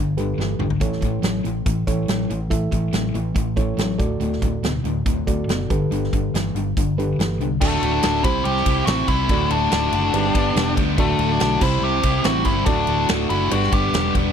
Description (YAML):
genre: classic rock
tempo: 142 BPM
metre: 4/4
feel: straight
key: D mixolydian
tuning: A4 = 441 Hz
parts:
  - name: crunchy overdriven guitar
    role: riff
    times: 0.0-14.3 s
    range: D2 to G4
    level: -26 LUFS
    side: right 13 dB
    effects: none
  - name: distorted electric guitar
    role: riff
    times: 0.0-14.3 s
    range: D2 to C5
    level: -25 LUFS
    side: left 14 dB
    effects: distortion
  - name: fingered electric bass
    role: bass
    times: 0.0-14.3 s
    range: D1 to D2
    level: -25 LUFS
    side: equal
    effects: none
  - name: reed electric piano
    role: accompaniment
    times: 0.2-14.2 s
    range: C4 to E5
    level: -28 LUFS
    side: right 8 dB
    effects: none
  - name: big rock drum kit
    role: drums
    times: 0.2-14.2 s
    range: crash cymbal, hi-hat, kick drum, ride cymbal, snare drum, toms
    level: -24 LUFS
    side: equal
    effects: none
  - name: nasal lead guitar with a parked wah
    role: melody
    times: 7.6-14.1 s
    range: A3 to G4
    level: -23 LUFS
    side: left 1 dB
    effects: overdrive, tape echo
  - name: mellow tonewheel organ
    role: sustained chords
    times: 7.6-14.3 s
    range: A3 to A4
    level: -34 LUFS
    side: left 2 dB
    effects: none
room: little or no reverb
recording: dry, close 1970s-style studio recording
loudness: -18 LUFS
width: side -8 dB against mid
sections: 0.0-7.6 A section; 7.6-14.3 B section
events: drum fill 0.4-0.8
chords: 0.0 Gadd9; 0.8 A; 4.0 D; 5.7 Gadd9; 7.6 D; 8.2 C; 9.3 D; 10.1 G; 11.0 D; 11.6 C; 12.7 D; 13.5 G